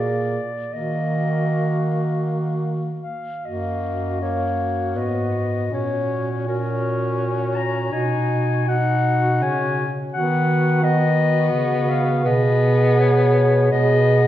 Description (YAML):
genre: classical, lyrical piece for single-reed quartet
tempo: 62-88 BPM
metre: 3/4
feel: rubato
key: Eb minor, F# major from 3.4 s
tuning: A4 = 439 Hz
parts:
  - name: warm clarinet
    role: melody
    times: 0.0-14.3 s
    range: A#4 to A#5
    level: -24 LUFS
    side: left 4 dB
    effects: none
  - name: dark alto saxophone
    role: second line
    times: 0.0-14.3 s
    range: F#4 to Ab4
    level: -25 LUFS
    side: right 2 dB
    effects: none
  - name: warm tenor saxophone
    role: accompaniment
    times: 0.0-14.3 s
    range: Bb3 to D#4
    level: -26 LUFS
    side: left 2 dB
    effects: none
  - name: warm bass clarinet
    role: bass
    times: 0.0-14.3 s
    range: F#2 to Eb3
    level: -22 LUFS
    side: right 1 dB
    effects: none
room: wet recital hall reverb, RT60 1.7 s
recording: dark, warm production, nothing above 10.5 kHz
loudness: -18 LUFS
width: side -12 dB against mid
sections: 0.0-3.4 A section; 3.4-14.3 B section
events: none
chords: 0.0 Bb7; 0.7 Ebm; 3.4 F#; 5.7 F#/A#; 7.9 B; 10.1 B/D#; 12.3 Abm/Cb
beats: | 0.74 1.69 2.58 | 3.44 4.21 4.96 | 5.72 6.47 7.20 | 7.93 8.68 9.42 | 10.14 10.83 11.53 | 12.26 12.99 13.72